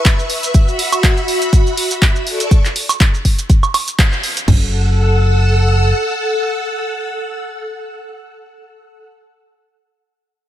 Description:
piano house; 122 BPM; 4/4; swing 55% on 16ths; F# minor; A4 = 438 Hz
string machine, violins; sustained chords; 0.0-9.1 s; F#4 to E6; -19 LUFS; equal; ensemble chorus, sidechain pumping
house drum kit; drums; 0.1-4.6 s; crash cymbal, kick drum, toms; -12 LUFS; equal
punchy analog drum machine; drums; 0.1-4.5 s; handclaps, hi-hat, shaker, woodblock; -18 LUFS; right 2 dB
deep dub fingered electric bass; bass; 4.5-5.9 s; F#1; -13 LUFS; equal; sidechain pumping
digital ambience; -12 LUFS; side -12 dB against mid
0.0-4.5 A section; 4.5-8.4 B section
drop 0.0-4.5; band accent 4.0
0.0 C#m7; 0.5 F#7sus4; 2.3 Aadd11; 4.5 F#m7
0.05 | 0.54 1.04 1.53 2.02 | 2.51 3.00 3.50 3.99 | 4.48 4.97 5.46 5.95 | 6.45 6.94 7.43 7.92

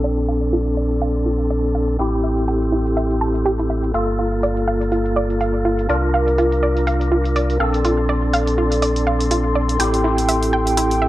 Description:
deep house; 123 BPM; 4/4; swing 57% on 16ths; A4 = 440 Hz
warm analog pad; sustained chords; 0.0-11.1 s; A4 to D6; -26 LUFS; equal; chorus
analog pluck; arpeggios; 0.0-11.1 s; E4 to A5; -23 LUFS; right 2 dB; chorus, tape echo
percussive tonewheel organ; stabs; 0.0-11.1 s; Bb3 to Bb4; -20 LUFS; equal; fast rotary speaker, vintage 12-bit sampler grit, tape echo
sub bass with octave; bass; 0.0-11.1 s; G1 to C2; -21 LUFS; equal; tube saturation
electronic hi-hat; drums; 0.0-11.0 s; -28 LUFS; right 1 dB
little or no reverb; dry, gritty hardware recording, low-pass filter; -16 LUFS; side -15 dB against mid
0.0-11.1 A section
filter sweep on tonewheel organ 0.0-11.1; filter sweep on analog synth pad 0.0-11.1; filter sweep on synth arpeggio sound 0.0-11.1; filter sweep 0.0-11.1
0.0 Bbmaj9; 2.0 Am7; 3.9 Gm9; 5.9 C9sus4; 7.6 Bbmaj9; 9.8 Am7
| 0.04 0.53 1.02 1.50 | 1.99 2.48 2.97 3.46 | 3.94 4.43 4.92 5.41 | 5.90 6.38 6.87 7.36 | 7.85 8.34 8.82 9.31 | 9.80 10.29 10.77

